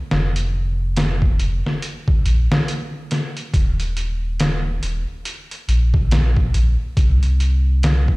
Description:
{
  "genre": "trip hop",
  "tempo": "70 BPM",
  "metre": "4/4",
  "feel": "swing 60% on 16ths",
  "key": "unclear",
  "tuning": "A4 = 440 Hz",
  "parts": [
    { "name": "warm sub bass", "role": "bass", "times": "0.1-8.2 s", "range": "Eb1 to C2", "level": "-18 LUFS", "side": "equal", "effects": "none" },
    { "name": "trip hop sampler-style drum kit", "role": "drums", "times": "0.1-8.2 s", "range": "hi-hat, kick drum, snare drum", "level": "-20 LUFS", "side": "equal", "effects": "none" }
  ],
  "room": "little or no reverb",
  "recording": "played on a big sound system in a bare room, stone room reverb",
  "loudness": "-17 LUFS",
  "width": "side -24 dB against mid",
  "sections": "0.0-8.2 A section",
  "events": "none",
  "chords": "none"
}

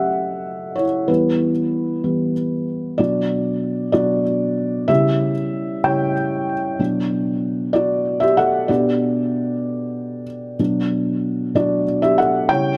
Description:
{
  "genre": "pop",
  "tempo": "63 BPM (dotted quarters)",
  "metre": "6/8",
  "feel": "straight",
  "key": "B minor",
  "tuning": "A4 = 440 Hz",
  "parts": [
    { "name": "felt-muted upright piano", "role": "solo", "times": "0.0-12.8 s", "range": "B2 to G5", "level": "-20 LUFS", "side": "equal", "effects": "none" }
  ],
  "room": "moderate plate reverb, RT60 2.7 s",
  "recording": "none",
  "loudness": "-20 LUFS",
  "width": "mono",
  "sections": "0.0-3.0 A section; 3.0-12.8 B section",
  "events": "felt piano solo 0.0-3.0, 3.0-12.8",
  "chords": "0.0 A6/C#; 1.1 Em; 3.0 Bm; 4.9 C#dim; 6.8 Bm; 8.7 G/B; 10.6 Bm"
}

